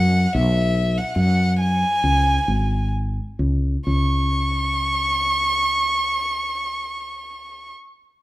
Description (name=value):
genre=acoustic folk-pop ballad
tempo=63-75 BPM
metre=4/4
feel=straight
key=C# minor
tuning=A4 = 436 Hz
part: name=dark violin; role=melody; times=0.0-7.7 s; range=E5 to C#6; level=-21 LUFS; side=equal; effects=none
part: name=woody fretless electric bass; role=bass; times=0.0-7.7 s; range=G#1 to F#2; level=-20 LUFS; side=equal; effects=none
room=moderate large studio reverb, RT60 1.3 s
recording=band playing live in one room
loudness=-18 LUFS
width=side -17 dB against mid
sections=0.0-3.9 A section; 3.9-7.7 B section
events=slowing down 0.0-3.9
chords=0.3 B5; 2.0 C#5; 3.9 N.C.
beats=| 0.34 1.17 2.02 2.92 | 3.85 4.81 5.76 6.71